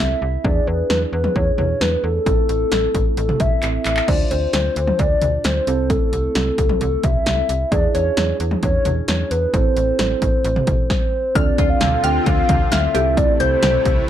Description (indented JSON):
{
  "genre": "synth-pop",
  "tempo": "132 BPM",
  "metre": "4/4",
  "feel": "straight",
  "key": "D minor",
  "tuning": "A4 = 440 Hz",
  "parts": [
    { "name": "hollow clarinet-like synth lead", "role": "melody", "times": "0.0-14.0 s", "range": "A4 to G5", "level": "-20 LUFS", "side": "left 1 dB", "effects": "chorus" },
    { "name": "muted felt-like synth keys", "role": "accompaniment", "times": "0.0-14.1 s", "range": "C4 to C5", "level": "-27 LUFS", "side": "right 6 dB", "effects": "chorus" },
    { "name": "slap-like FM bass", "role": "bass", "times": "0.0-14.0 s", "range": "A1 to E2", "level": "-22 LUFS", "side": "equal", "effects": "none" },
    { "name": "punchy analog drum machine", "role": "drums", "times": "0.4-14.0 s", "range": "crash cymbal, handclaps, hi-hat, kick drum, snare drum, toms", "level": "-20 LUFS", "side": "equal", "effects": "none" },
    { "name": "lush unison pad", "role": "sustained chords", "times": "11.4-14.1 s", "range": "C3 to F4", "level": "-26 LUFS", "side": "left 2 dB", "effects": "chorus" },
    { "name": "resonant blip pluck", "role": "arpeggios", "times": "11.4-13.8 s", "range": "D3 to G6", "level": "-27 LUFS", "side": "left 2 dB", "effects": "phaser, analog delay" }
  ],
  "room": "light reverb, digital ambience",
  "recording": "dark, warm production",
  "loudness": "-16 LUFS",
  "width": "side -10 dB against mid",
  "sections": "0.0-11.4 A section; 11.4-14.1 B section",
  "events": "drum fill 3.6-4.1",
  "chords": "0.4 E7; 2.3 Am; 4.1 Dm7; 5.7 C6; 7.7 E7; 9.5 Am; 11.4 Dm7; 12.9 C6"
}